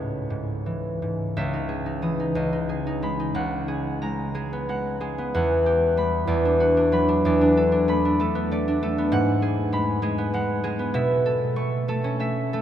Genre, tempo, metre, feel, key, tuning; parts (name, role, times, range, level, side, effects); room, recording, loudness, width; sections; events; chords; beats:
classical, solo harp piece; 54-66 BPM (dotted quarters); 6/8; rubato; C# minor; A4 = 440 Hz
concert harp; solo; 0.0-12.6 s; C#2 to D#6; -21 LUFS; equal
wet cathedral reverb, RT60 5.3 s; in a vast, echoing space; -21 LUFS; side -10 dB against mid
0.0-1.4 A section; 1.4-12.6 B section
0.0 C#m; 1.4 C#madd9; 2.3 B69/C#; 3.3 G#m9/C#; 5.3 Emadd9; 6.3 D69/E; 7.3 Bm7/E; 9.1 G#m7; 11.0 B9sus4
0.28 | 1.35 2.35 | 3.33 4.33 | 5.34 6.29 | 7.26 8.20 | 9.13 10.04 | 10.96 11.90